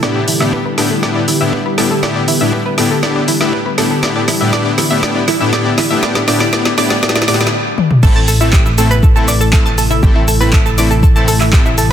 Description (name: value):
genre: progressive house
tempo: 120 BPM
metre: 4/4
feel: straight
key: A minor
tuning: A4 = 440 Hz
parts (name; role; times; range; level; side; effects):
- airy breathy pad; sustained chords; 0.0-11.9 s; C3 to A4; -20 LUFS; left 1 dB; chorus, sidechain pumping
- analog pluck; arpeggios; 0.0-11.9 s; E4 to A6; -18 LUFS; right 1 dB; chorus, sidechain pumping, tape echo
- soft supersaw; stabs; 0.0-11.6 s; A2 to A4; -16 LUFS; left 2 dB; cassette tape, sidechain pumping, tape echo
- plucky analog bass; bass; 0.0-11.9 s; A1; -17 LUFS; equal; sidechain pumping, high-pass filter
- deep house drum kit; drums; 0.0-11.9 s; crash cymbal, handclaps, hi-hat, shaker, snare drum, toms; -17 LUFS; equal; none
- electronic kick drum; drums; 0.0-11.6 s; none; -11 LUFS; equal; high-pass filter on kick
room: light reverb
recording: dense, heavily limited modern master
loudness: -10 LUFS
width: side -10 dB against mid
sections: 0.0-8.0 A section; 8.0-11.9 B section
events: build-up 0.0-8.0; filter sweep on synth arpeggio sound 0.0-8.0; filter sweep on analog synth pad 0.0-8.0; drum fill 0.0-7.5, 7.8; drop 8.0-11.9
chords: 0.0 Em7/A; 8.0 Am